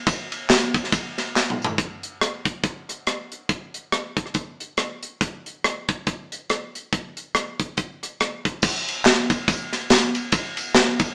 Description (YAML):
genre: gospel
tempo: 140 BPM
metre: 4/4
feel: swing 58% on 8ths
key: none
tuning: none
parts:
  - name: crisp fusion drum kit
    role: drums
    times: 0.1-11.1 s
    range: crash cymbal, hi-hat, kick drum, ride cymbal, rim click, snare drum, toms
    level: -23 LUFS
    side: equal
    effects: none
  - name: tambourine and handclaps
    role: percussion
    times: 0.1-1.7, 8.6-11.1 s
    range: none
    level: -29 LUFS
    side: equal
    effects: none
room: wet studio reverb, RT60 0.8 s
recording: band playing live in one room, small speaker sound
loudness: -24 LUFS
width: mono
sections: 0.0-1.8 A section; 1.8-8.6 B section; 8.6-11.1 A section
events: drum fill 1.4-1.8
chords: none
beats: | 0.07 0.49 0.92 1.35 | 1.78 2.21 2.64 3.06 | 3.49 3.92 4.35 4.78 | 5.21 5.64 6.07 6.49 | 6.92 7.35 7.78 8.20 | 8.63 9.06 9.48 9.91 | 10.33 10.76